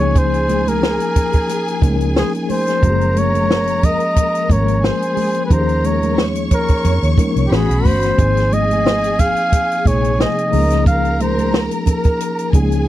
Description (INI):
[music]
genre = lush 1970s-style soul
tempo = 90 BPM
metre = 4/4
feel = swing 54% on 16ths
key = unclear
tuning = A4 = 440 Hz
[part]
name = breathy flugelhorn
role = melody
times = 0.0-12.5 s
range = G4 to F5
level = -19 LUFS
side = equal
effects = none
[part]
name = warm studio string section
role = second line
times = 0.0-12.9 s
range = F#4 to Db6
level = -26 LUFS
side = right 1 dB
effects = none
[part]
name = mellow tine electric piano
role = accompaniment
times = 0.0-12.9 s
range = C3 to Bb4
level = -21 LUFS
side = left 4 dB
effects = medium stereo tremolo
[part]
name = vintage muted fingered electric bass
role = bass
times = 0.0-12.9 s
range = Gb1 to F2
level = -19 LUFS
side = right 1 dB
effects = none
[part]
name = compact cocktail drum kit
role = drums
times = 0.2-12.9 s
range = hi-hat, kick drum, snare drum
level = -16 LUFS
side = equal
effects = none
[part]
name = congas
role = percussion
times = 0.2-12.7 s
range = none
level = -26 LUFS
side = right 6 dB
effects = none
[sound]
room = little or no reverb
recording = dry, close 1970s-style studio recording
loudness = -14 LUFS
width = side -14 dB against mid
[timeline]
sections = 0.0-12.9 A section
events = none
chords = 0.0 Db69; 2.8 Gbmaj9; 5.5 Eb9sus4; 7.5 A69; 8.2 Ab69; 10.5 Db69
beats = | 0.15 0.82 1.49 2.16 | 2.83 3.50 4.17 4.84 | 5.51 6.18 6.85 7.51 | 8.19 8.86 9.52 10.19 | 10.86 11.53 12.20 12.88